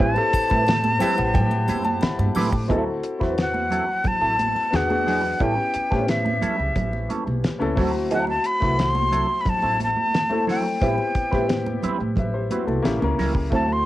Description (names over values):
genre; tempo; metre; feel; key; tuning
lush 1970s-style soul; 89 BPM; 4/4; straight; A dorian; A4 = 445 Hz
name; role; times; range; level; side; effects
breathy bright jazz flute; melody; 0.0-13.9 s; E5 to C6; -23 LUFS; left 1 dB; cassette tape
clear concert grand piano; accompaniment; 0.0-13.9 s; A3 to D6; -26 LUFS; left 3 dB; cassette tape
mellow electric guitar; riff; 0.0-13.7 s; E3 to B4; -28 LUFS; right 4 dB; wah, cassette tape
upright bass; bass; 0.0-13.8 s; A1 to A2; -26 LUFS; equal; none
damped 70s drum kit; drums; 0.0-13.7 s; hi-hat, kick drum, snare drum; -25 LUFS; equal; none
congas; percussion; 0.0-13.8 s; none; -30 LUFS; right 3 dB; none
triangle; percussion; 0.2-2.7 s; none; -43 LUFS; left 5 dB; none
room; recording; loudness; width
moderate studio reverb, RT60 0.6 s; home recording on cassette; -19 LUFS; side -15 dB against mid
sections
0.0-2.7 A section; 2.7-13.9 B section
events
grand piano fill 0.7-2.7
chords
0.0 Am9; 2.7 D9; 4.7 E7; 5.4 A7; 7.8 D9; 10.8 Am9; 12.8 A7b9